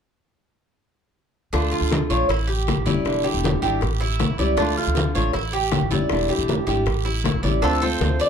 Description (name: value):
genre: latin, Cuban son and guajira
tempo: 158 BPM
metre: 4/4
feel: straight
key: D harmonic minor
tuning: A4 = 437 Hz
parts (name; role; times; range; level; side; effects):
- nylon-string guitar; accompaniment; 1.5-8.3 s; D3 to F4; -25 LUFS; left 3 dB; none
- Cuban tres; arpeggios; 1.5-8.3 s; D4 to D5; -24 LUFS; right 3 dB; none
- upright bass; bass; 1.5-8.2 s; E1 to D2; -24 LUFS; right 1 dB; none
- bongos; percussion; 1.5-8.2 s; none; -30 LUFS; left 5 dB; none
- congas; percussion; 1.5-8.3 s; none; -27 LUFS; left 2 dB; none
- guiro; percussion; 1.5-8.3 s; none; -33 LUFS; right 8 dB; none
- Cuban tres; melody; 7.6-8.3 s; A4 to D5; -22 LUFS; left 1 dB; none
room: light reverb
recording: dark, warm production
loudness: -19 LUFS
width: side -7 dB against mid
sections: 1.5-7.6 A section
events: none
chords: 1.5 Dm; 2.3 A7; 3.1 E7#9; 3.8 A7; 4.6 Dm; 5.3 A7; 6.1 E7#9; 6.9 A7; 7.6 Dm7